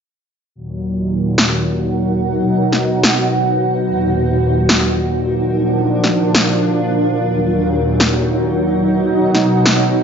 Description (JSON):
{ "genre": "heavy wobble dubstep", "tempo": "145 BPM", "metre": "4/4", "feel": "half-time", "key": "Eb harmonic minor", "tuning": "A4 = 445 Hz", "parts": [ { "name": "supersaw pad", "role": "sustained chords", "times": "0.6-10.0 s", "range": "Eb2 to D#4", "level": "-16 LUFS", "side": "equal", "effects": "low-pass filter" }, { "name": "granular cloud pad", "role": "texture", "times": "1.2-10.0 s", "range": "D4 to Gb5", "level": "-18 LUFS", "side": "right 1 dB", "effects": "built-in reverb" }, { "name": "electronic snare drum", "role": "drums", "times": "1.4-9.7 s", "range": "none", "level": "-15 LUFS", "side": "equal", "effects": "studio reverb" } ], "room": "moderate digital room reverb, RT60 1.1 s, digital ambience", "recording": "nothing above 7.5 kHz", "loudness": "-13 LUFS", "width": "side -7 dB against mid", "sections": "0.6-10.0 A section", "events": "filter sweep on supersaw synth 0.6-10.0", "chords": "0.6 Ebm; 2.2 B; 3.9 Ebm; 5.5 Bb; 7.2 Ebm; 8.8 B" }